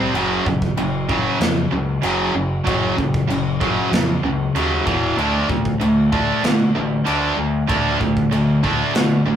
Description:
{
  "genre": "heavy metal",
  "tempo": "96 BPM",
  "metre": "4/4",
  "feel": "straight",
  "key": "F# minor",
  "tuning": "A4 = 437 Hz",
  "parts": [
    { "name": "distorted electric guitar", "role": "riff", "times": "0.0-9.4 s", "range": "E2 to D4", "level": "-21 LUFS", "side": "left 3 dB", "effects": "overdrive" },
    { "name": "tight distorted guitar", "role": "riff", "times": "0.0-9.4 s", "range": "E2 to D4", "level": "-21 LUFS", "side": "right 4 dB", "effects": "distortion" },
    { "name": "growling picked electric bass", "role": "bass", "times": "0.0-9.4 s", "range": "E1 to B2", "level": "-25 LUFS", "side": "right 1 dB", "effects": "overdrive" },
    { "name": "modern studio drum kit", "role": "drums", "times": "0.1-9.1 s", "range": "china cymbal, kick drum, snare drum", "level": "-24 LUFS", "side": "left 1 dB", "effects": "none" }
  ],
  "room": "wet small room reverb, RT60 0.5 s",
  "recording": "rough rehearsal-room recording",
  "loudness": "-16 LUFS",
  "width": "side -9 dB against mid",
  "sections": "0.0-9.4 A section",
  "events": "none",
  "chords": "0.2 F#5; 4.9 E5; 5.2 D5"
}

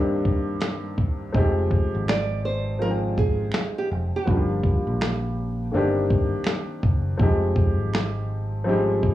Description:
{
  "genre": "lo-fi hip hop",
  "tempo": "82 BPM",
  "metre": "4/4",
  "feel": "swing 62% on 16ths",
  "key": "F dorian",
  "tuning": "A4 = 444 Hz",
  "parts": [
    { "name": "dark upright piano", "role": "accompaniment", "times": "0.0-9.1 s", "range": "G2 to G5", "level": "-25 LUFS", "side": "left 1 dB", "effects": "none" },
    { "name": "dusty soul sampler-style drum kit", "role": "drums", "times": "0.3-9.1 s", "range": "finger snaps, hi-hat, kick drum, snare drum", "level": "-22 LUFS", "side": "equal", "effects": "none" },
    { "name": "picked electric bass", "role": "bass", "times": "1.3-9.1 s", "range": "F1 to Bb1", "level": "-26 LUFS", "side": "equal", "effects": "none" },
    { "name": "nylon-string guitar", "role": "melody", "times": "2.1-6.8 s", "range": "F4 to D5", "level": "-30 LUFS", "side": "right 4 dB", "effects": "tape echo" },
    { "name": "finger snap", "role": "percussion", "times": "2.1-8.1 s", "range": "none", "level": "-40 LUFS", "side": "right 6 dB", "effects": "none" }
  ],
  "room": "light reverb",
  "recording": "worn, warbling old tape, cassette tape, warbly pitch drift, small room reverb",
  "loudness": "-21 LUFS",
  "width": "side -14 dB against mid",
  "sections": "0.0-1.3 A section; 1.3-9.1 B section",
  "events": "hi-hats muted 1.3-9.1",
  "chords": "0.0 Cm7/G; 1.3 Fm7; 4.3 Gm7; 5.7 Cm7/G; 7.2 Fm7"
}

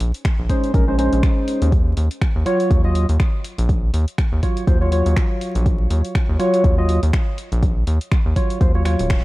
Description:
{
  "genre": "deep house",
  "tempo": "122 BPM",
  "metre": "4/4",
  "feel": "swing 57% on 16ths",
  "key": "unclear",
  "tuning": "A4 = 440 Hz",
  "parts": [
    { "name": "rubbery square bass", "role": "bass", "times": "0.0-9.2 s", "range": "Eb1 to Eb2", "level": "-18 LUFS", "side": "equal", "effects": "tube saturation, sidechain pumping" },
    { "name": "deep house drum kit", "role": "drums", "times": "0.0-9.2 s", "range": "finger snaps, hi-hat", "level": "-32 LUFS", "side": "equal", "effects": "overdrive" },
    { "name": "electronic kick drum", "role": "drums", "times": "0.2-9.2 s", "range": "none", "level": "-18 LUFS", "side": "equal", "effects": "overdrive" },
    { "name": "percussive organ stab", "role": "stabs", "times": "0.5-9.2 s", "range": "Gb3 to Eb5", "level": "-21 LUFS", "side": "equal", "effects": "lush chorus, sidechain pumping, analog delay" }
  ],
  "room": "little or no reverb",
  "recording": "dark, warm production, vinyl crackle",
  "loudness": "-16 LUFS",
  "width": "side -19 dB against mid",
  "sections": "0.0-9.2 A section",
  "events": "none",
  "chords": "0.0 Bbm11; 1.7 Ebm9"
}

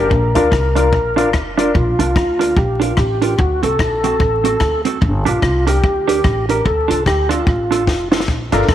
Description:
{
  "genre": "ska",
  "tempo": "147 BPM",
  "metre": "4/4",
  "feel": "swing 60% on 8ths",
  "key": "Bb major",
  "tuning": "A4 = 440 Hz",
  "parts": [
    { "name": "mellow tonewheel organ", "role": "melody", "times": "0.0-8.7 s", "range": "D4 to Bb4", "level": "-18 LUFS", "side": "equal", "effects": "chorus vibrato, slow rotary speaker, tube saturation" },
    { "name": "mellow electric guitar", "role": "accompaniment", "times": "0.0-8.6 s", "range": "C4 to Bb4", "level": "-21 LUFS", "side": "right 7 dB", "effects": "phaser" },
    { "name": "dark upright piano", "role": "stabs", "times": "0.0-1.7, 8.5-8.6 s", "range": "D4 to Bb4", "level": "-20 LUFS", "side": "left 7 dB", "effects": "none" },
    { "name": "upright bass", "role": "bass", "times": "0.0-8.7 s", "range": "F1 to D2", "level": "-19 LUFS", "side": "equal", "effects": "none" },
    { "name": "compact cocktail drum kit", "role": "drums", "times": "0.1-8.7 s", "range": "hi-hat, kick drum, rim click, snare drum", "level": "-20 LUFS", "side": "left 1 dB", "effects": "tape echo" }
  ],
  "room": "moderate plate reverb, RT60 2.5 s",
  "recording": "1960s-style stereo with parts hard left and right, vinyl crackle",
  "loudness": "-13 LUFS",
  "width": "side -11 dB against mid",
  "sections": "0.0-1.7 A section; 1.7-8.7 A section",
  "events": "drum fill 7.9-8.3",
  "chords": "0.1 Bb; 3.4 D7; 5.0 Gm; 6.7 Dm"
}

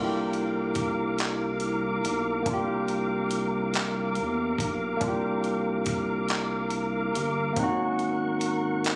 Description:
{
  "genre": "slow six-eight R&B",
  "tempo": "47 BPM (dotted quarters)",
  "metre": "6/8",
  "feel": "straight",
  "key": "unclear",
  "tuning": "A4 = 436 Hz",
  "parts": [
    { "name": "barky tine electric piano", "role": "accompaniment", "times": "0.0-9.0 s", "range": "Bb3 to A4", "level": "-31 LUFS", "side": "equal", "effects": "overdrive" },
    { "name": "tonewheel organ", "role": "sustained chords", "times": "0.0-9.0 s", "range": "Bb4 to D6", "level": "-34 LUFS", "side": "equal", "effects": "overdrive, chorus vibrato, slow rotary speaker" },
    { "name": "rubbery square bass", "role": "bass", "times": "0.0-9.0 s", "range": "G1 to E2", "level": "-36 LUFS", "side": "equal", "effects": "none" },
    { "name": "dusty soul sampler-style drum kit", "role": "drums", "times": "0.3-9.0 s", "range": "handclaps, hi-hat, kick drum", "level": "-35 LUFS", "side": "equal", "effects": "none" }
  ],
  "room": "light reverb, digital ambience",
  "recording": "recorded on a phone in the room, studio reverb, compression",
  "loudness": "-28 LUFS",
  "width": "mono",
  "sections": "0.0-9.0 A section",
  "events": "none",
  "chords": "0.0 C9sus4; 7.6 Ab9sus4"
}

